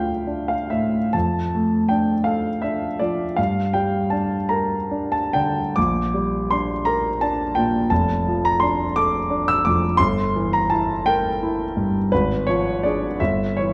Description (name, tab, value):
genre	classical, romantic nocturne for solo piano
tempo	45-60 BPM (dotted quarters)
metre	12/8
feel	rubato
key	D minor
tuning	A4 = 440 Hz
part	clear grand piano	solo	0.0-13.7 s	F1 to E6	-21 LUFS	equal	none
room	wet recital hall reverb, RT60 1.6 s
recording	dark, warm production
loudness	-21 LUFS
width	mono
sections	0.0-13.7 A section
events	none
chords	0.0 Dm; 1.1 Dm/F; 3.4 Gm; 5.8 Gm/Bb; 7.9 Dm/F; 10.0 Edim/G; 12.1 G#dim7; 13.2 A7/G (rootless)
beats	1.14 2.25 | 3.38 4.50 5.77 6.85 | 7.91 8.97 9.98 11.06 | 12.11 13.20